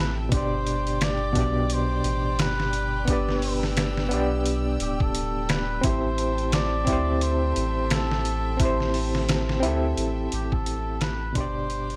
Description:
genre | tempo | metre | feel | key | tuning
trip hop | 87 BPM | 4/4 | swing 58% on 16ths | A minor | A4 = 440 Hz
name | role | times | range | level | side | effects
trumpet with cup mute | melody | 0.0-12.0 s | G4 to D5 | -33 LUFS | equal | tape echo
overdriven reed electric piano | accompaniment | 0.0-12.0 s | B2 to D5 | -30 LUFS | equal | tremolo, vintage 12-bit sampler grit
clear studio violin section | sustained chords | 0.0-12.0 s | G4 to E6 | -41 LUFS | equal | none
soft dub sub bass | bass | 0.0-12.0 s | D1 to D2 | -30 LUFS | equal | tube saturation
trip hop sampler-style drum kit | drums | 0.3-12.0 s | hi-hat, kick drum, snare drum | -30 LUFS | equal | none
room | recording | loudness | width
light reverb, digital ambience | none | -25 LUFS | mono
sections
0.0-12.0 A section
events
fade-out 9.5-12.0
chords
0.3 G; 5.8 Am7; 11.4 G

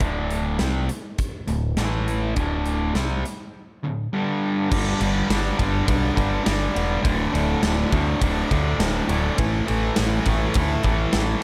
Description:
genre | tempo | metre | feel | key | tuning
classic rock | 103 BPM | 4/4 | straight | unclear | A4 = 440 Hz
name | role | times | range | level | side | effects
distorted electric guitar | riff | 0.0-11.4 s | D2 to C4 | -26 LUFS | equal | distortion
growling picked electric bass | bass | 0.0-11.3 s | D1 to D2 | -27 LUFS | equal | overdrive
big rock drum kit | drums | 0.0-11.3 s | crash cymbal, hi-hat, kick drum, ride cymbal, snare drum | -28 LUFS | equal | none
room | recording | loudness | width
light reverb, studio reverb | none | -23 LUFS | mono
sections
0.0-4.7 A section; 4.7-11.4 B section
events
none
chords
0.0 D5; 1.8 A5; 2.4 D5; 4.1 G5; 7.0 D5; 9.4 A5

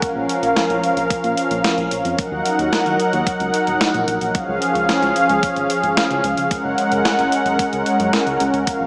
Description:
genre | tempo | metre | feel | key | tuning
synthwave | 111 BPM | 4/4 | straight | unclear | A4 = 440 Hz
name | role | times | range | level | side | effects
warm analog pad | sustained chords | 0.0-8.9 s | F3 to Gb5 | -20 LUFS | equal | chorus, sidechain pumping
clean 12-bit digital drum machine | drums | 0.0-8.8 s | hi-hat, snare drum | -25 LUFS | equal | none
electronic kick drum | drums | 0.0-8.8 s | none | -26 LUFS | equal | none
chorused synth bass | bass | 0.2-8.9 s | Eb1 to Bb2 | -30 LUFS | equal | none
room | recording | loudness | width
wet plate reverb, RT60 1.4 s, digital ambience | dreamy mix soaked in reverb, small speaker sound | -19 LUFS | mono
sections
0.0-8.9 A section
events
none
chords
0.0 Bbm; 2.2 Ebm; 4.3 Db; 6.5 Gbadd9

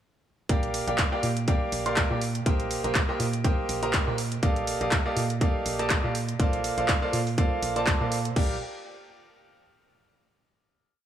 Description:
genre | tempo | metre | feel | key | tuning
piano house | 122 BPM | 4/4 | swing 55% on 16ths | Bb major | A4 = 440 Hz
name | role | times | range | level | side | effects
bright grand piano | riff | 0.5-8.6 s | Bb3 to C6 | -28 LUFS | right 1 dB | sidechain pumping, tape echo
organ-like FM bass | bass | 0.5-8.6 s | Bb1 to Bb2 | -31 LUFS | right 2 dB | sidechain pumping
electronic kick drum | drums | 0.5-8.5 s | none | -26 LUFS | equal | overdrive
house drum kit | drums | 0.5-8.5 s | crash cymbal, handclaps, hi-hat | -30 LUFS | equal | overdrive
room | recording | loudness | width
light reverb | none | -24 LUFS | side -10 dB against mid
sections
0.5-8.4 groove; 8.4-10.3 final chord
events
none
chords
0.5 Bb6; 2.2 Cm7/Bb; 4.2 Ebmaj9#11/Bb; 6.2 Dm7/Bb; 8.4 Bb6

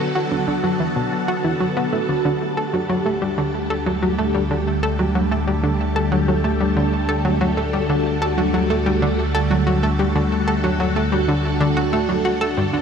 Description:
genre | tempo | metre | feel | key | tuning
ambient, sequencer-driven space music | 93 BPM | 4/4 | straight | unclear | A4 = 440 Hz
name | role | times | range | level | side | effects
phased string machine | sustained chords | 0.0-12.8 s | D3 to A4 | -21 LUFS | equal | ensemble chorus, phaser
analog pluck | riff | 0.2-12.8 s | G2 to A4 | -21 LUFS | equal | chorus, ping-pong delay
analog drone | bass | 3.2-12.8 s | G1 to D2 | -25 LUFS | equal | chorus
room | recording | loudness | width
moderate shimmer reverb, RT60 7.9 s | none | -17 LUFS | side -7 dB against mid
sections
0.0-2.2 A section; 2.2-12.8 B section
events
none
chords
0.0 Bm; 2.2 Dsus4

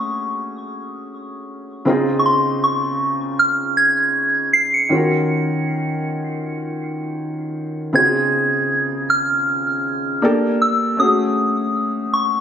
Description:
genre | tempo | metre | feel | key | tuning
R&B | 79 BPM | 4/4 | swing 54% on 16ths | Db major | A4 = 440 Hz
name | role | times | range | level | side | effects
soft synth bell | melody | 0.0-12.4 s | C6 to Db7 | -18 LUFS | equal | chorus, tape echo
felt-muted upright piano | accompaniment | 0.0-12.4 s | Db3 to Bb4 | -21 LUFS | equal | none
room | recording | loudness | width
light reverb, small room ambience | recorded on a phone in the room, club reverb, compression | -16 LUFS | side -8 dB against mid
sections
0.0-7.9 A section; 7.9-12.4 B section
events
none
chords
0.0 Gbmadd9; 1.9 Dbmaj7; 4.9 Ebm7; 7.9 Dbmaj7; 10.2 Gmadd9; 11.0 Gbmadd9

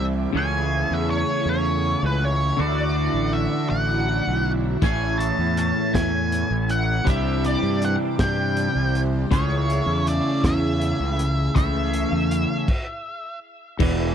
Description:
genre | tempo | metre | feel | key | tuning
psychedelic rock | 54 BPM (dotted quarters) | 6/8 | straight | unclear | A4 = 443 Hz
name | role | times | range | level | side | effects
octave-fuzz lead guitar | melody | 0.0-13.4 s | B4 to A5 | -27 LUFS | equal | wah, distortion, tape echo
phased string machine | sustained chords | 0.0-12.7 s | E4 to E5 | -34 LUFS | right 5 dB | ensemble chorus, phaser
twangy electric guitar | riff | 0.0-14.1 s | E2 to G#4 | -24 LUFS | equal | phaser, double-tracked left and right
fuzz fingered electric bass | bass | 0.0-14.1 s | E1 to G2 | -24 LUFS | equal | overdrive
crunchy breakbeat drum kit | drums | 4.8-14.0 s | crash cymbal, hi-hat, kick drum, snare drum | -24 LUFS | equal | none
room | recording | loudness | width
little or no reverb | dry, close 1970s-style studio recording | -20 LUFS | side -8 dB against mid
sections
0.0-13.8 A section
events
stop 12.7-13.8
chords
0.3 Amaj7/C#; 2.6 Dadd9; 4.8 Amaj7; 7.1 Cadd9; 9.3 Amaj7/C#

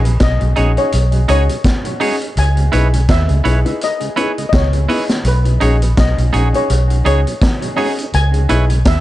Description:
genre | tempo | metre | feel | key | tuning
lovers rock reggae | 83 BPM | 4/4 | swing 56% on 16ths | B major | A4 = 440 Hz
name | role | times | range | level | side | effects
steel pan | melody | 0.0-9.0 s | B4 to G#5 | -22 LUFS | left 2 dB | dub echo
mellow tonewheel organ | accompaniment | 0.0-8.8 s | B2 to E4 | -28 LUFS | right 3 dB | chorus vibrato, slow rotary speaker, dub echo
vintage muted fingered electric bass | bass | 0.0-9.0 s | A#1 to D#2 | -13 LUFS | equal | none
vintage drum kit | drums | 0.0-9.0 s | hi-hat, kick drum, snare drum | -18 LUFS | equal | none
clear grand piano | accompaniment | 0.6-8.6 s | B3 to G#4 | -22 LUFS | left 2 dB | dub echo
twangy electric guitar | stabs | 0.6-8.6 s | D#4 to C#5 | -21 LUFS | right 5 dB | none
room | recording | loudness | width
light reverb, small room ambience | dark, warm production, nothing above 10.3 kHz | -12 LUFS | side -15 dB against mid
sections
0.0-9.0 A section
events
none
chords
0.0 B69; 2.4 C#m7; 5.2 B69; 8.1 C#m7

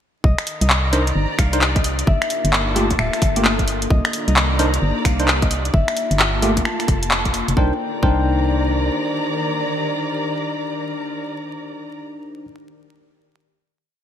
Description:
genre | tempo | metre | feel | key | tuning
UK garage, two-step garage | 131 BPM | 4/4 | swing 63% on 16ths | C minor | A4 = 440 Hz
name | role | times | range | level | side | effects
concert harp | melody | 0.2-12.4 s | D5 to A5 | -28 LUFS | left 3 dB | digital delay
ethereal airy pad | sustained chords | 0.9-12.0 s | Eb3 to D5 | -29 LUFS | left 1 dB | ensemble chorus, built-in reverb, sidechain pumping
organ-like FM bass | bass | 0.2-8.9 s | D1 to C2 | -21 LUFS | equal | sidechain pumping
electronic kick drum | drums | 0.2-8.2 s | none | -18 LUFS | equal | small room ambience
dark chamber string section | texture | 0.2-12.0 s | Eb3 to Bb5 | -28 LUFS | equal | sidechain pumping
garage drum kit | drums | 0.4-7.6 s | finger snaps, handclaps, hi-hat | -20 LUFS | equal | small room ambience, gated reverb
bell-like tine electric piano | stabs | 0.9-12.4 s | A3 to C5 | -24 LUFS | left 1 dB | analog chorus
room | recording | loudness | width
moderate lush hall reverb, RT60 2.1 s | bright 1980s-style digital production, vinyl crackle | -17 LUFS | side -9 dB against mid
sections
0.2-7.6 drop; 7.6-11.2 final chord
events
drop 0.2-7.6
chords
0.2 Cm9; 2.1 Gm9; 3.9 Cm9; 5.7 Gm9; 7.6 Cm9

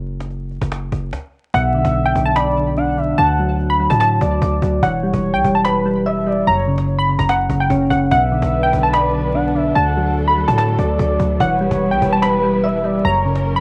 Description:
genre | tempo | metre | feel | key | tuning
hip hop, trap | 146 BPM | 4/4 | half-time | B minor | A4 = 439 Hz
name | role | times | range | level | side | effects
distorted 808-style bass | bass | 0.0-13.6 s | E1 to A2 | -24 LUFS | equal | distortion
cajon | drums | 0.2-13.5 s | none | -29 LUFS | equal | none
warbly dusty pluck | melody | 1.5-13.6 s | F#5 to B5 | -21 LUFS | equal | chorus, tape echo
gliding portamento lead | second line | 1.5-13.4 s | B4 to F#5 | -26 LUFS | equal | chorus, cassette tape, tape echo
soft electric-piano-like synth keys | accompaniment | 1.5-13.6 s | F#2 to E5 | -22 LUFS | equal | chorus, cassette tape
muted symphonic string section | sustained chords | 8.1-13.6 s | F#3 to B4 | -28 LUFS | equal | cassette tape
room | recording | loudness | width
light reverb, small room ambience | home recording on cassette, vinyl crackle, nothing above 10.6 kHz | -17 LUFS | mono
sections
0.0-1.5 A section; 1.5-13.6 B section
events
break 0.0-1.5; stop 1.1-1.5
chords
0.0 N.C.; 1.5 Bm; 3.2 D; 4.8 Em; 6.5 F#; 8.1 Bm; 9.8 D; 11.4 Em; 13.0 F#

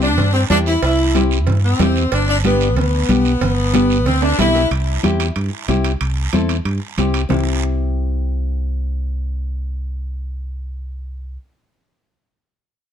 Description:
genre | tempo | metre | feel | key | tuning
latin, cumbia | 185 BPM | 4/4 | straight | C major | A4 = 440 Hz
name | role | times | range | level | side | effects
warm saxophone section | melody | 0.0-4.7 s | B3 to E4 | -19 LUFS | left 1 dB | analog delay
nylon-string guitar | accompaniment | 0.0-11.4 s | B3 to A4 | -21 LUFS | left 5 dB | none
fingered electric bass | bass | 0.0-11.4 s | G1 to G2 | -19 LUFS | equal | none
guiro | percussion | 0.0-7.4 s | none | -29 LUFS | right 9 dB | none
congas | percussion | 0.2-7.4 s | none | -23 LUFS | right 4 dB | none
cowbell and timbales | percussion | 0.2-7.4 s | none | -26 LUFS | right 8 dB | none
room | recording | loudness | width
light reverb | dark, warm production | -15 LUFS | side -9 dB against mid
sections
0.0-4.7 A section; 4.7-7.3 B section; 7.3-9.9 C section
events
drum fill 4.2-4.7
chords
0.0 C; 2.1 G; 4.7 C

